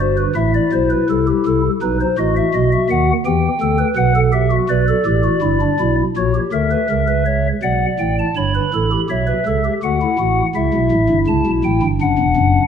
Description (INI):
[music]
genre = classical, baroque-style 3-part fugue for pipe organ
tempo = 82 BPM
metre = 3/4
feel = straight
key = E minor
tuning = A4 = 440 Hz
[part]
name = pipe organ, stopped flute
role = solo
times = 0.0-12.6 s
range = E1 to B5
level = -14 LUFS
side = equal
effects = none
[sound]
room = moderate concert hall reverb, RT60 1.7 s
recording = none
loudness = -14 LUFS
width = side -8 dB against mid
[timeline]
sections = 0.0-8.4 A section; 8.4-12.7 B section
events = none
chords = 0.0 Em/G; 1.1 Am/C; 1.8 B; 3.3 Em; 4.0 Bm; 5.4 Em/G; 6.2 F#/A# (rootless); 7.6 Bm; 8.4 Em/G; 9.8 D; 10.6 C#dim; 12.0 Dadd9/E